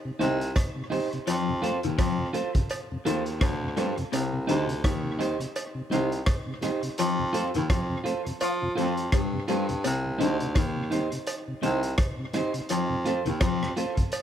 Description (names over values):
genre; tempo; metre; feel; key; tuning
roots reggae; 84 BPM; 4/4; swing 58% on 16ths; C dorian; A4 = 443 Hz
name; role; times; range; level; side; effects
mellow tonewheel organ; accompaniment; 0.1-14.0 s; F2 to C4; -34 LUFS; equal; slow rotary speaker
electric guitar at the edge of break-up; accompaniment; 0.2-14.0 s; Eb4 to C5; -31 LUFS; right 3 dB; spring reverb, tape echo
electric guitar through a small old amp; riff; 0.2-13.6 s; C3 to F4; -31 LUFS; left 6 dB; ensemble chorus
warm baritone saxophone; bass; 0.2-13.7 s; C2 to F3; -29 LUFS; equal; none
crunchy breakbeat drum kit; drums; 0.2-14.2 s; hi-hat, kick drum, rim click; -29 LUFS; equal; none
cowbell; percussion; 0.6-14.2 s; none; -36 LUFS; right 2 dB; none
room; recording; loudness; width
light reverb; none; -25 LUFS; side -10 dB against mid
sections
0.0-14.2 A section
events
none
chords
0.0 Cm; 1.3 F; 4.1 Cm; 7.0 F; 9.8 Cm; 12.7 F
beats
0.56 | 1.27 1.99 2.70 3.42 | 4.13 4.84 5.56 6.27 | 6.99 7.70 8.41 9.13 | 9.84 10.56 11.27 11.98 | 12.70 13.41 14.13